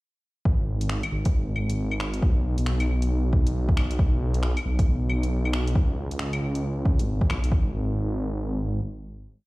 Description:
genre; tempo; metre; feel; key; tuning
future garage; 136 BPM; 4/4; swing 62% on 16ths; unclear; A4 = 440 Hz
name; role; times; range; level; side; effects
swelling detuned saw bass; bass; 0.5-8.8 s; G#1 to C#2; -25 LUFS; equal; tube saturation, sidechain pumping
electronic kick drum; drums; 0.5-7.6 s; none; -22 LUFS; equal; none
deep house drum kit; drums; 0.8-7.5 s; claves, finger snaps, hi-hat; -34 LUFS; left 1 dB; none
room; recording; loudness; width
little or no reverb; played on a big sound system in a bare room, cassette tape, large studio reverb; -22 LUFS; side -21 dB against mid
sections
0.5-7.5 groove; 7.5-9.5 final note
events
none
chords
none

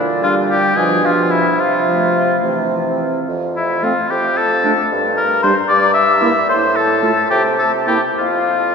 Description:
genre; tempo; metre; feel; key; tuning
quick classical-period movement for wind quintet; 68-77 BPM (dotted quarters); 6/8; rubato; F major; A4 = 440 Hz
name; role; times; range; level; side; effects
clear bassoon; bass; 0.0-8.7 s; F2 to C3; -20 LUFS; right 2 dB; none
mellow concert flute; melody; 0.2-8.7 s; E5 to E6; -21 LUFS; left 5 dB; none
clear oboe; second line; 0.2-8.7 s; E4 to E5; -16 LUFS; left 2 dB; none
warm French horn; accompaniment; 0.2-8.0 s; E3 to Bb3; -23 LUFS; equal; none
warm clarinet; accompaniment; 0.2-8.0 s; A3 to F4; -25 LUFS; right 5 dB; none
room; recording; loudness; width
wet cathedral reverb, RT60 4.6 s; minimal, uncompressed stereo recording; -13 LUFS; side -5 dB against mid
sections
0.0-8.7 A section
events
none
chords
0.0 Gm/Bb; 0.8 Bdim; 1.6 F/C; 2.4 C; 3.3 N.C.; 4.1 Dm/F (rootless); 4.9 G5; 5.7 Em/G; 6.5 F/A (rootless); 7.3 C7(no3); 8.2 N.C.

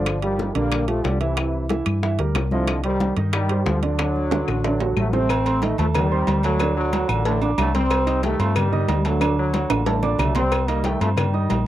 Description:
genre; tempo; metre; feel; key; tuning
latin, salsa; 184 BPM; 4/4; straight; unclear; A4 = 440 Hz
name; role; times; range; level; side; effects
bright trombone section; melody; 0.0-11.6 s; A2 to C4; -24 LUFS; left 1 dB; none
warm upright piano; accompaniment; 0.0-11.6 s; C3 to Eb6; -26 LUFS; right 5 dB; none
hollow-body short-scale fingered electric bass; bass; 0.0-11.7 s; G1 to G2; -23 LUFS; left 1 dB; none
bongos and cowbell; percussion; 0.1-11.7 s; none; -30 LUFS; left 6 dB; none
claves; percussion; 0.1-11.3 s; none; -32 LUFS; left 14 dB; none
congas; percussion; 0.1-11.7 s; none; -29 LUFS; left 2 dB; none
timbales and agogo bells; percussion; 0.1-11.7 s; none; -28 LUFS; right 6 dB; none
room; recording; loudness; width
moderate booth ambience, RT60 0.2 s; dry, close 1970s-style studio recording; -19 LUFS; side -13 dB against mid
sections
0.0-5.3 A section; 5.3-11.7 B section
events
drum fill 4.3-5.3, 9.7-10.5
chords
0.1 Gm7; 1.4 C7; 2.7 Cmadd9; 4.0 D; 5.3 Adim; 6.6 D; 7.9 Cm; 9.2 D; 10.5 Cm

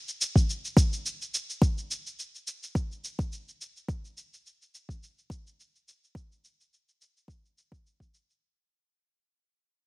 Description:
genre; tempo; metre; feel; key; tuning
downtempo; 106 BPM; 4/4; swing 55% on 16ths; none; none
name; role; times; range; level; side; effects
cabasa; drums; 0.1-8.4 s; none; -33 LUFS; equal; overdrive, studio reverb
electronic kick drum; drums; 0.4-8.1 s; none; -23 LUFS; equal; studio reverb
room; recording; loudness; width
little or no reverb; heavily compressed radio sound; -27 LUFS; side -26 dB against mid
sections
0.0-8.4 A section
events
fade-out 0.0-8.4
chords
none

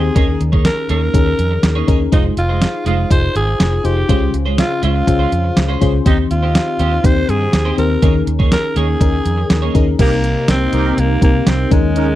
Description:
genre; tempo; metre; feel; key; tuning
1980s-style pop; 122 BPM; 4/4; straight; unclear; A4 = 440 Hz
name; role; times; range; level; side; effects
breathy alto saxophone; melody; 0.0-12.2 s; Ab3 to C5; -20 LUFS; right 1 dB; slapback echo
FM electric piano; accompaniment; 0.0-12.2 s; C3 to C5; -20 LUFS; left 7 dB; chorus
twelve-string electric guitar; riff; 0.0-9.9 s; Ab3 to Db5; -24 LUFS; right 6 dB; lush chorus, slapback echo
vintage muted fingered electric bass; bass; 0.0-12.2 s; F1 to G2; -17 LUFS; right 1 dB; none
clean 12-bit digital drum machine; drums; 0.2-12.1 s; crash cymbal, hi-hat, kick drum, snare drum; -15 LUFS; right 1 dB; none
phased analog pad; sustained chords; 10.0-12.2 s; C3 to Ab4; -24 LUFS; right 3 dB; phaser, chorus
analog synth brass; stabs; 10.0-12.1 s; Db4 to Bb4; -21 LUFS; right 2 dB; chorus
room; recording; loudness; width
little or no reverb; dry, close 1970s-style studio recording; -12 LUFS; side -14 dB against mid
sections
0.0-10.0 A section; 10.0-12.2 B section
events
none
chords
0.2 Eb7sus4; 2.1 Fm7; 4.1 Dbmaj7; 6.1 Cm/Eb; 8.0 Eb7sus4; 10.0 Cm7

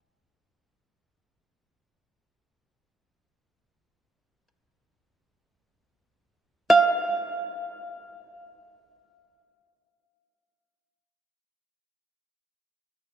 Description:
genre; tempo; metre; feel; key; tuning
world meditative, free-time meditation music; free time; none; none; unclear; A4 = 439 Hz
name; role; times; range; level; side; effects
bluegrass banjo; solo; 0.0-13.1 s; F5 to Ab5; -20 LUFS; right 3 dB; none
room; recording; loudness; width
wet plate reverb, RT60 3.5 s; dreamy mix soaked in reverb; -20 LUFS; side -9 dB against mid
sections
0.0-12.7 A section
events
none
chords
none

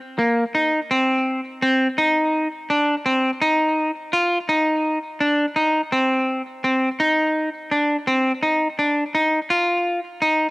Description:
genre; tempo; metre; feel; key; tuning
progressive instrumental, progressive; 168 BPM (eighths); 7/8; straight; unclear; A4 = 440 Hz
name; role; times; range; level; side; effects
semi-hollow electric guitar; solo; 0.2-10.5 s; Bb3 to F4; -18 LUFS; equal; cassette tape, tape echo
room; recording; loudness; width
moderate studio reverb, RT60 0.6 s; home recording on cassette; -18 LUFS; side -23 dB against mid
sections
0.0-8.4 A section; 8.4-10.5 B section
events
none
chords
none

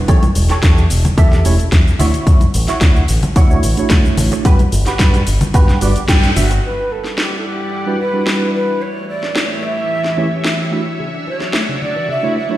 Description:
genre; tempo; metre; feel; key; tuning
nu-disco, nu disco; 110 BPM; 4/4; straight; unclear; A4 = 440 Hz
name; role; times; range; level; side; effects
tine electric piano; accompaniment; 0.0-12.6 s; E3 to E5; -21 LUFS; right 3 dB; medium stereo tremolo, sidechain pumping, dub echo
direct-recorded clean electric guitar; riff; 0.1-6.6 s; E4 to G5; -22 LUFS; right 2 dB; ensemble chorus, dub echo
fingered electric bass with an envelope filter; bass; 0.1-6.6 s; E1 to G2; -15 LUFS; equal; sidechain pumping
electronic kick drum; drums; 0.1-6.2 s; none; -11 LUFS; equal; overdrive
house drum kit; drums; 0.1-11.7 s; hi-hat, shaker, snare drum; -21 LUFS; equal; overdrive
congas; percussion; 0.2-6.5 s; none; -22 LUFS; left 1 dB; none
breathy mellow jazz flute; melody; 6.4-12.6 s; F#4 to E5; -21 LUFS; right 1 dB; dub echo
string machine, full ensemble; sustained chords; 7.0-12.6 s; E3 to F#5; -23 LUFS; equal; ensemble chorus, sidechain pumping
analog pluck; arpeggios; 11.0-12.6 s; C#3 to A3; -25 LUFS; left 2 dB; chorus, sidechain pumping
room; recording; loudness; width
light reverb, digital ambience; played on a big sound system in a bare room, stone room reverb; -12 LUFS; side -15 dB against mid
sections
0.0-6.6 A section; 6.6-12.6 B section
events
clean electric guitar fill 5.5-6.6; band accent 6.1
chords
0.1 A7/E; 2.0 Dmaj9; 4.5 Gmaj7; 8.8 A7/E; 10.7 Dmaj9

